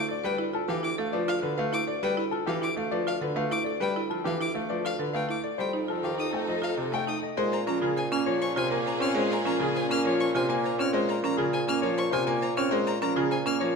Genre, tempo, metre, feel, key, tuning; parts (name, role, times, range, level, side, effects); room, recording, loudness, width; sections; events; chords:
classical, minimalist pattern music; 101 BPM; 3/4; straight; D dorian, Bb minor from 7.4 s; A4 = 440 Hz
buzzing marimba with medium hard mallets; arpeggios; 0.0-13.8 s; Db4 to C5; -31 LUFS; right 8 dB
warm violin; arpeggios; 0.0-13.6 s; F5 to F6; -34 LUFS; left 4 dB
warm bassoon; bass; 0.0-13.8 s; D2 to Bb2; -33 LUFS; left 1 dB
clear grand piano; melody; 0.1-13.8 s; G4 to Ab5; -31 LUFS; left 8 dB
bright concert grand piano; accompaniment; 0.2-13.8 s; C3 to C4; -32 LUFS; right 2 dB
warm studio violin section; sustained chords; 5.6-10.8 s; Db4 to A4; -34 LUFS; left 2 dB
moderate scoring stage reverb, RT60 1.6 s; -25 LUFS; side -4 dB against mid
0.0-7.4 A section; 7.4-13.8 B section
0.0 Dm69; 5.6 F7; 7.4 Bbm7